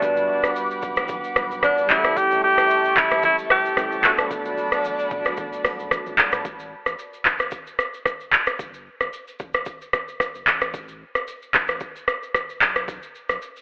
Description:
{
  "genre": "afrobeats",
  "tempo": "112 BPM",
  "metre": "4/4",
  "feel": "swing 55% on 16ths",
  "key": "unclear",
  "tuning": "A4 = 435 Hz",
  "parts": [
    { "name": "breathy tenor saxophone", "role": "melody", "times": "0.0-5.9 s", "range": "D4 to G4", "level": "-19 LUFS", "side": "equal", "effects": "none" },
    { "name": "bell-like tine electric piano", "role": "accompaniment", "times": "0.0-6.5 s", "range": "F#3 to B4", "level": "-31 LUFS", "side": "right 1 dB", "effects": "medium stereo tremolo" },
    { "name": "airy breathy pad", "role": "sustained chords", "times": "0.0-6.4 s", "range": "G3 to D6", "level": "-28 LUFS", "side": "equal", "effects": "chorus, phaser" },
    { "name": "saturated sub bass", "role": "bass", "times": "0.0-13.4 s", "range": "E1 to B1", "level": "-45 LUFS", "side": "equal", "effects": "none" },
    { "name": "afro-pop drum kit", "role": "drums", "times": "0.0-13.6 s", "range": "handclaps, hi-hat, kick drum, rim click, shaker, toms", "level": "-20 LUFS", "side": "equal", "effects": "overdrive" },
    { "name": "congas", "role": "percussion", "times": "0.0-6.3 s", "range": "none", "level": "-42 LUFS", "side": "equal", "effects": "none" }
  ],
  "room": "light reverb, digital ambience",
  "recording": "telephone sound",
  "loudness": "-19 LUFS",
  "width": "side -24 dB against mid",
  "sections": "0.0-6.5 A section; 6.5-13.6 B section",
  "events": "none",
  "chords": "0.0 Gmaj7; 1.9 A7; 4.0 Bm7; 6.5 F#m; 8.6 N.C.",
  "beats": "| 0.02 0.56 1.09 1.63 | 2.17 2.70 3.24 3.77 | 4.31 4.84 5.38 5.92 | 6.45 6.99 7.52 8.06 | 8.60 9.13 9.67 10.20 | 10.74 11.27 11.81 12.35 | 12.88 13.42"
}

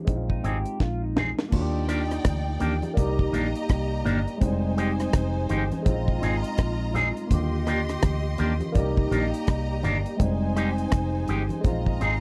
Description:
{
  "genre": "lovers rock reggae",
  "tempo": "83 BPM",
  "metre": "4/4",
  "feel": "swing 60% on 16ths",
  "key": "Eb major",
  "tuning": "A4 = 440 Hz",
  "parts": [
    { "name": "barky tine electric piano", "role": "accompaniment", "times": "0.0-12.2 s", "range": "D3 to D5", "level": "-32 LUFS", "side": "equal", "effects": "overdrive, phaser" },
    { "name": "vintage muted fingered electric bass", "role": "bass", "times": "0.1-12.2 s", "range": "F1 to Eb2", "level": "-30 LUFS", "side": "equal", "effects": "none" },
    { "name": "deep reggae drum kit", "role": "drums", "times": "0.1-12.2 s", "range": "crash cymbal, hi-hat, kick drum, rim click, snare drum", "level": "-26 LUFS", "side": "equal", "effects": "none" },
    { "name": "congas", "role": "percussion", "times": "0.1-12.2 s", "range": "none", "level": "-38 LUFS", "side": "equal", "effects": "none" },
    { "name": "electric guitar through a small old amp", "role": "arpeggios", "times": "0.3-1.5 s", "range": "Eb4 to G4", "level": "-38 LUFS", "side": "equal", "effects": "analog chorus" },
    { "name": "electric guitar with an envelope filter", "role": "stabs", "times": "0.4-12.1 s", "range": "Eb3 to Ab4", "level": "-30 LUFS", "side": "equal", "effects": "none" },
    { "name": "rich studio string section", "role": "second line", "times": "1.5-12.2 s", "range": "Eb4 to C6", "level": "-36 LUFS", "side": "equal", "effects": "none" }
  ],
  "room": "little or no reverb",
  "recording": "dry, close 1970s-style studio recording",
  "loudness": "-25 LUFS",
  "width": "mono",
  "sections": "0.0-1.5 A section; 1.5-12.2 B section",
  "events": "drum fill 0.8-1.5",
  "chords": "0.1 Bb9sus4; 1.5 Ebmaj7; 3.0 Cm9; 4.4 Fm9; 5.9 Bb9sus4; 7.3 Ebmaj7; 8.8 Cm9; 10.2 Fm9; 11.6 Bb9sus4",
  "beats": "0.07 0.80 | 1.52 2.25 2.97 3.69 | 4.42 5.14 5.86 6.58 | 7.31 8.03 8.75 9.48 | 10.20 10.92 11.65"
}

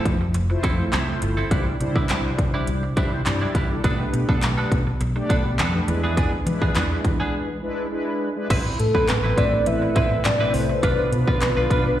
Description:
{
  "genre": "dance-pop",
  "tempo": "103 BPM",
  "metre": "4/4",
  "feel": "straight",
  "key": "A minor",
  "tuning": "A4 = 440 Hz",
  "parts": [
    { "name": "mellow synth brass", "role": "accompaniment", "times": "0.0-12.0 s", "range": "G3 to D5", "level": "-27 LUFS", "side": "equal", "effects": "chorus, plate reverb, slapback echo" },
    { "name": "twelve-string electric guitar", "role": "riff", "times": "0.0-11.9 s", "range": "G3 to B4", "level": "-28 LUFS", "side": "right 3 dB", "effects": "lush chorus, slapback echo" },
    { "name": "vintage muted fingered electric bass", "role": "bass", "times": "0.1-11.9 s", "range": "F1 to E3", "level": "-24 LUFS", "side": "equal", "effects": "sidechain pumping" },
    { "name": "pop drum kit", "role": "drums", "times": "0.1-11.8 s", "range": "crash cymbal, handclaps, hi-hat, kick drum, snare drum", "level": "-23 LUFS", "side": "equal", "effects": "overdrive" },
    { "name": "group handclap", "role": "percussion", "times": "0.9-11.6 s", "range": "none", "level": "-38 LUFS", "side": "left 5 dB", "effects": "none" },
    { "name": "glassy FM pad", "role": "sustained chords", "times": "8.7-12.0 s", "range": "C3 to B4", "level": "-31 LUFS", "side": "left 1 dB", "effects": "ensemble chorus, built-in reverb, phaser, sidechain pumping, plate reverb" },
    { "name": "soft octave-layered synth lead", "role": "melody", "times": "8.8-12.0 s", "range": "A4 to E5", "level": "-22 LUFS", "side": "left 1 dB", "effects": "chorus, digital delay, plate reverb, slapback echo" }
  ],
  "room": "light reverb",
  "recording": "live gig heard through the venue's PA, recital hall reverb",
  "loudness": "-19 LUFS",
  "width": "side -12 dB against mid",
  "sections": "0.0-8.5 A section; 8.5-12.0 B section",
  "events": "break 7.3-8.5",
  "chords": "0.0 Fmaj7; 1.5 Cadd9; 3.8 Gadd9/B; 5.9 E7; 8.5 Amadd9; 10.8 Bdim",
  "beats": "0.35 0.93 | 1.51 2.09 2.68 3.26 | 3.84 4.42 5.01 5.59 | 6.17 6.75 7.34 7.92 | 8.50 9.08 9.67 10.25 | 10.83 11.41 12.00"
}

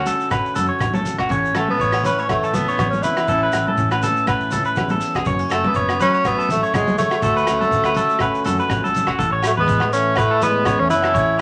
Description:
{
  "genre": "highlife guitar band",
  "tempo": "122 BPM",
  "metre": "4/4",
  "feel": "swing 54% on 16ths",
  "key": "A major",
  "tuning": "A4 = 440 Hz",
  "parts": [
    { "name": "edgy tenor saxophone", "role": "melody", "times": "0.0-11.4 s", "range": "G#3 to E4", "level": "-22 LUFS", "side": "equal", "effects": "none" },
    { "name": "picked steel-string acoustic guitar", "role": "accompaniment", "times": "0.0-11.4 s", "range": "E2 to F#4", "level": "-29 LUFS", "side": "equal", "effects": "none" },
    { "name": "electric guitar at the edge of break-up", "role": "arpeggios", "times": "0.0-11.4 s", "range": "F#4 to C#5", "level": "-23 LUFS", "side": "equal", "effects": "none" },
    { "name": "fingered electric bass", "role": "bass", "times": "0.0-11.4 s", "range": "F#1 to A2", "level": "-30 LUFS", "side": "equal", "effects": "none" },
    { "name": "vintage drum kit", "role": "drums", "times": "0.1-11.3 s", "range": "hi-hat, kick drum, rim click", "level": "-30 LUFS", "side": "equal", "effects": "none" },
    { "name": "congas", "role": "percussion", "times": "0.1-9.1 s", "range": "none", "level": "-29 LUFS", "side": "equal", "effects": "none" },
    { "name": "shekere", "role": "percussion", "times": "0.1-11.4 s", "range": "none", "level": "-33 LUFS", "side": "equal", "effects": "none" },
    { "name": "agogo bells", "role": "percussion", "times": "0.3-11.1 s", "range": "none", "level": "-32 LUFS", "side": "equal", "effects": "none" },
    { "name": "bright trombone", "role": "second line", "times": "9.5-11.4 s", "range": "E3 to C#4", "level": "-28 LUFS", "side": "equal", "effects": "none" }
  ],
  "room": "wet studio ambience, RT60 0.5 s",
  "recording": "none",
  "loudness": "-19 LUFS",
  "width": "mono",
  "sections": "0.0-9.2 A section; 9.2-11.4 B section",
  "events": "none",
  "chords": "0.0 Dmaj7; 1.3 A; 5.2 F#m; 7.2 Dmaj7; 9.2 A",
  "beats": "0.31 0.81 | 1.30 1.79 2.29 2.78 | 3.28 3.77 4.26 4.76 | 5.25 5.74 6.24 6.73 | 7.22 7.72 8.21 8.70 | 9.19 9.68 10.17 10.66 | 11.15"
}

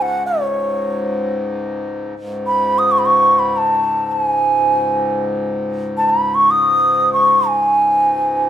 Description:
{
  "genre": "indian classical, Hindustani",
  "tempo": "free time",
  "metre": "none",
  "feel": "none",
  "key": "unclear",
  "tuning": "A4 = 438 Hz",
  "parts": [
    { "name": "bansuri", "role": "melody", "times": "0.0-8.5 s", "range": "C#5 to D#6", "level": "-14 LUFS", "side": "right 1 dB", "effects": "none" },
    { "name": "hand-pumped harmonium", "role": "drone", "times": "0.0-8.5 s", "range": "C#2 to G#2", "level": "-22 LUFS", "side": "left 2 dB", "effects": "none" }
  ],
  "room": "moderate recital hall reverb, RT60 1.6 s",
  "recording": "minimal, uncompressed stereo recording",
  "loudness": "-14 LUFS",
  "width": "side -10 dB against mid",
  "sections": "0.0-2.2 A section; 2.2-8.5 A section",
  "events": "none",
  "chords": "none",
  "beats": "free time"
}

